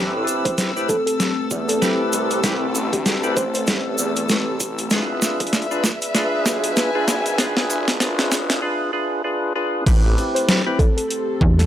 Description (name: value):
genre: glitch hop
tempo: 97 BPM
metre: 4/4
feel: swing 59% on 16ths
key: A minor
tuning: A4 = 440 Hz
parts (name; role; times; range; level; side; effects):
- dark analog pad; sustained chords; 0.0-11.7 s; A3 to E5; -28 LUFS; equal; chorus, phaser, sidechain pumping
- percussive tonewheel organ; stabs; 0.0-10.9 s; C4 to B4; -24 LUFS; equal; overdrive, slow rotary speaker, sidechain pumping, analog delay
- phased detuned saw bass; bass; 0.0-10.2 s; E1 to E2; -25 LUFS; equal; phaser, high-pass filter
- warm chamber string section; texture; 0.0-11.7 s; A4 to E6; -28 LUFS; left 2 dB; sidechain pumping
- dubstep drum kit; drums; 0.3-11.7 s; crash cymbal, hi-hat, snare drum; -21 LUFS; equal; overdrive
- egg shaker; percussion; 0.3-8.6 s; none; -28 LUFS; right 3 dB; none
- woody wave-folded pluck; melody; 0.4-3.6, 10.3-11.7 s; G4 to C5; -25 LUFS; equal; chorus, cassette tape, analog delay
- electronic kick drum; drums; 0.5-11.6 s; none; -21 LUFS; equal; overdrive, high-pass filter on kick
- slap-like FM bass; bass; 11.4-11.7 s; E2; -15 LUFS; equal; none
room: light reverb, digital ambience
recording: dry, gritty hardware recording, high-pass filter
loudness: -18 LUFS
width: side -11 dB against mid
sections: 0.0-9.9 A section; 9.9-11.7 B section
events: build-up 0.0-9.9; drum fill 0.0-8.6; break 8.6-9.9; drop 9.9-11.7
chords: 0.0 Am9; 4.9 E7b9; 9.9 Am9